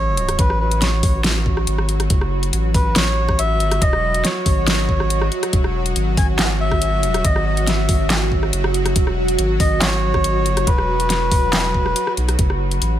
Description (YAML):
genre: deep dubstep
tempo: 140 BPM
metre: 4/4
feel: half-time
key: F# dorian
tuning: A4 = 437 Hz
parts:
  - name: melodica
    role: melody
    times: 0.0-12.1 s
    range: B4 to G#5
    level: -23 LUFS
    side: left 1 dB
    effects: dub echo
  - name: bowed-like drone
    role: sustained chords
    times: 0.0-13.0 s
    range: F#3 to F#4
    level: -25 LUFS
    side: right 1 dB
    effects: built-in reverb
  - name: saturated sub bass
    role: bass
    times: 0.0-13.0 s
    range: E1 to B1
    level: -20 LUFS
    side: equal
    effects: none
  - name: dubstep drum kit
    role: drums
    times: 0.2-12.9 s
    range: handclaps, hi-hat, rim click, snare drum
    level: -22 LUFS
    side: left 1 dB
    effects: overdrive
  - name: electronic kick drum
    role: drums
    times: 0.4-12.5 s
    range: none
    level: -18 LUFS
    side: equal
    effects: overdrive
room: digital ambience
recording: none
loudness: -16 LUFS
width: side -11 dB against mid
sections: 0.0-13.0 A section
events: none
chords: 0.0 F#m; 5.5 E; 12.4 F#m